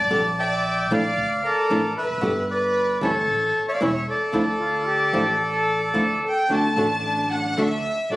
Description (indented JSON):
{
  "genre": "tango",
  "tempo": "113 BPM",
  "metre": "4/4",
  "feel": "rubato",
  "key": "D minor",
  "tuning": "A4 = 436 Hz",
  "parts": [
    { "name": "bandoneon", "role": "melody", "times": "0.0-6.2 s", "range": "A4 to A5", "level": "-23 LUFS", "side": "equal", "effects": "none" },
    { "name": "warm chamber violin section", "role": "second line", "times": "0.0-8.2 s", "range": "A4 to A5", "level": "-25 LUFS", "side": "equal", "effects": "none" },
    { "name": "upright bass", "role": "bass", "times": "0.0-8.2 s", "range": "E1 to D2", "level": "-31 LUFS", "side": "equal", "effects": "none" },
    { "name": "flamenco guitar", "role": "accompaniment", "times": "0.1-8.2 s", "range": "B2 to G4", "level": "-24 LUFS", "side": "equal", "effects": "none" },
    { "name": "bright concert flute", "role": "second line", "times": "4.6-6.4 s", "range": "F4 to A4", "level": "-26 LUFS", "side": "equal", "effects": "none" },
    { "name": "muted studio string section", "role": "stabs", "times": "6.5-8.2 s", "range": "F#3 to D4", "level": "-29 LUFS", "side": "equal", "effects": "none" }
  ],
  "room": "moderate large studio reverb, RT60 1.3 s",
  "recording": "recorded on a phone in the room, studio reverb",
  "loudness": "-20 LUFS",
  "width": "side -18 dB against mid",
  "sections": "0.0-6.5 A section; 6.5-8.2 B section",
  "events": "violin section solo 6.5-8.2",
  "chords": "0.1 Gm/Bb; 1.2 Dmadd9; 2.2 G; 3.3 A; 4.3 Dmadd9; 6.5 D"
}